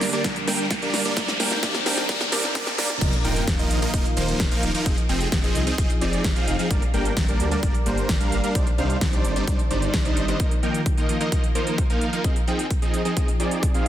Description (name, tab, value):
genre	EDM, festival progressive house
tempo	130 BPM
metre	4/4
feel	straight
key	Eb major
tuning	A4 = 440 Hz
part	lush unison pad	sustained chords	0.0-13.9 s	G2 to D5	-32 LUFS	equal	chorus, sidechain pumping
part	supersaw chords	riff	0.0-13.9 s	F3 to G5	-25 LUFS	right 1 dB	sidechain pumping, low-pass filter, dub echo
part	big-room dance drum kit	drums	0.0-13.9 s	crash cymbal, hi-hat, snare drum	-28 LUFS	equal	none
part	riser and sub drop	sound effects	0.0-4.9 s	none	-29 LUFS	left 1 dB	none
part	electronic kick drum	drums	0.2-13.7 s	none	-23 LUFS	equal	none
part	wide detuned saw bass	bass	3.0-10.3 s	Eb1 to D2	-28 LUFS	equal	chorus, sidechain pumping
room	light reverb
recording	dense, heavily limited modern master, high-pass filter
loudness	-20 LUFS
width	side -12 dB against mid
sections	0.0-3.0 A section; 3.0-13.9 B section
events	build-up 0.0-3.0; drum fill 0.0-3.0; riser 0.0-3.0; filter sweep on analog synth pad 0.0-3.0, 3.0-13.9; impact 3.0-4.9; filter sweep on supersaw synth 3.0-13.9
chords	0.0 Gm; 1.2 Cmadd9; 3.0 Ebsus2; 4.9 Fm7; 6.7 Gm; 8.6 Cmadd9; 10.4 Ebsus2; 12.2 Fm7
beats	0.24 0.71 | 1.17 1.63 2.09 2.55 | 3.01 3.48 3.94 4.40 | 4.86 5.32 5.78 6.24 | 6.71 7.17 7.63 8.09 | 8.55 9.01 9.47 9.94 | 10.40 10.86 11.32 11.78 | 12.24 12.71 13.17 13.63